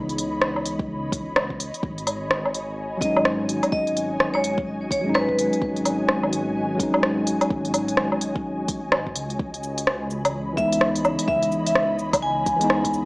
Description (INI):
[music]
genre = future garage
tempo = 127 BPM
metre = 4/4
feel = swing 61% on 16ths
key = C# minor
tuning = A4 = 440 Hz
[part]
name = tine electric piano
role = accompaniment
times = 0.0-13.1 s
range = E3 to D#4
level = -26 LUFS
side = equal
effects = vintage 12-bit sampler grit, sidechain pumping, low-pass filter, analog delay
[part]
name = ethereal airy pad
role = sustained chords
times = 0.0-13.1 s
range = E3 to B5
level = -31 LUFS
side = equal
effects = ensemble chorus, built-in reverb, sidechain pumping
[part]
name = dark detuned saw bass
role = bass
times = 0.0-13.1 s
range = G#1 to C#2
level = -34 LUFS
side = equal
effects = tube saturation, sidechain pumping
[part]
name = deep house drum kit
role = drums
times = 0.1-13.1 s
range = cabasa, hi-hat, rim click, woodblock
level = -22 LUFS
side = equal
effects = studio reverb
[part]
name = electronic kick drum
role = drums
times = 0.8-12.9 s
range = none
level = -30 LUFS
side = equal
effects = studio reverb
[part]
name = vibraphone with hard mallets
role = melody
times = 3.0-5.6, 10.6-12.9 s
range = B4 to G#5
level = -24 LUFS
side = equal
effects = tape echo
[sound]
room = light reverb, digital ambience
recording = dry, gritty hardware recording, small speaker sound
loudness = -21 LUFS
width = side -26 dB against mid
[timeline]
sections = 0.0-9.4 A section; 9.4-13.1 A section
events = filter sweep on tine electric piano 9.4-13.1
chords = 0.0 C#m9; 1.8 G#7sus4; 9.4 C#m9